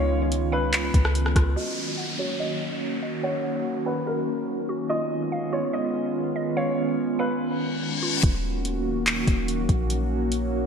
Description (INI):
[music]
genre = hip hop, atmospheric cloud-rap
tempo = 144 BPM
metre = 4/4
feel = half-time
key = Eb minor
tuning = A4 = 439 Hz
[part]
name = felt-muted upright piano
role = melody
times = 0.0-8.2 s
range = Bb4 to Eb5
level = -31 LUFS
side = left 1 dB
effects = low-pass filter, ping-pong delay
[part]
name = warbly tape-like pad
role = sustained chords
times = 0.0-10.7 s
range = Eb3 to Gb4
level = -27 LUFS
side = right 1 dB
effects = chorus, built-in reverb, tremolo, sidechain pumping, low-pass filter
[part]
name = mallet-like synth pluck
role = arpeggios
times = 0.0-8.2 s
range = F4 to Gb5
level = -35 LUFS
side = right 3 dB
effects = chorus, low-pass filter, ping-pong delay
[part]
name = soft 808-style bass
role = bass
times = 0.0-1.6, 8.2-10.7 s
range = Eb1 to Db2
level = -26 LUFS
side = equal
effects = none
[part]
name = smooth R&B drum kit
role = drums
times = 0.3-1.5, 8.2-10.4 s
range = handclaps, hi-hat, kick drum, rim click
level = -23 LUFS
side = equal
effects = gated reverb
[part]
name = downlifter and reverse cymbal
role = sound effects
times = 1.6-8.2 s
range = none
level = -31 LUFS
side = left 4 dB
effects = none
[sound]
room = moderate lush hall reverb, RT60 2.0 s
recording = bright 1980s-style digital production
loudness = -23 LUFS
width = side -6 dB against mid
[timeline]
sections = 0.0-1.6 A section; 1.6-8.2 B section; 8.2-10.7 C section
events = filter sweep 1.6-8.2; reverse cymbal 7.6-8.2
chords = 0.0 Db9; 1.6 Ebm7; 4.9 Db9; 8.2 Ebm7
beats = 0.32 0.73 1.15 | 1.57 1.98 2.40 2.82 | 3.23 3.65 4.07 4.48 | 4.90 5.32 5.73 6.15 | 6.57 6.98 7.40 7.82 | 8.23 8.65 9.07 9.48 | 9.90 10.32